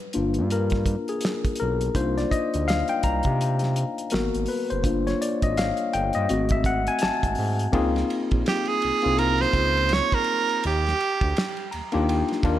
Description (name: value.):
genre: R&B, neo-soul.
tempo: 83 BPM.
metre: 4/4.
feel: swing 60% on 16ths.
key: unclear.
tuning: A4 = 440 Hz.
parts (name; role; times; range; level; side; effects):
barky tine electric piano; accompaniment; 0.1-12.6 s; A3 to Bb5; -25 LUFS; left 3 dB; overdrive.
cloth-damped thuddy drum kit; drums; 0.1-12.6 s; hi-hat, kick drum, ride cymbal, snare drum; -28 LUFS; right 1 dB; none.
smooth synth bass; bass; 0.2-12.6 s; Gb1 to C3; -26 LUFS; right 1 dB; none.
breathy tenor saxophone; melody; 8.5-11.7 s; G4 to Db5; -23 LUFS; right 5 dB; tape echo.
room: light reverb, small room ambience.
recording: none.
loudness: -21 LUFS.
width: side -12 dB against mid.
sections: 0.0-7.7 A section; 7.7-12.6 B section.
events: tine electric piano solo 0.0-7.7; tine electric piano fill 11.4-12.6.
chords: 0.0 Gm7; 2.0 Cm11; 4.1 Abm7; 4.8 Gm7; 6.3 Ab7b9; 7.7 Dbmaj13; 10.6 Ebmaj7.